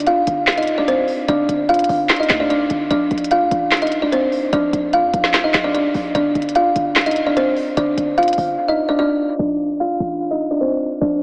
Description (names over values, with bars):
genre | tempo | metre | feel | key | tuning
hip hop, trap | 148 BPM | 4/4 | half-time | G minor | A4 = 440 Hz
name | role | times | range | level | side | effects
kalimba | melody | 0.0-11.2 s | C4 to F5 | -19 LUFS | equal | analog delay
short 808-style bass | bass | 0.0-11.2 s | G1 to F2 | -30 LUFS | equal | none
trap drum kit | drums | 0.0-8.5 s | handclaps, hi-hat, snare drum | -23 LUFS | equal | none
room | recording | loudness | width
wet huge ambient reverb, RT60 4.8 s | dreamy mix soaked in reverb, low-pass filter, AM radio sound | -18 LUFS | mono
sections
0.0-9.4 A section; 9.4-11.2 B section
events
drums muted 8.6-9.4; filter sweep 9.4-11.2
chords
0.0 G5; 2.9 Bb; 6.2 G5; 9.4 Bb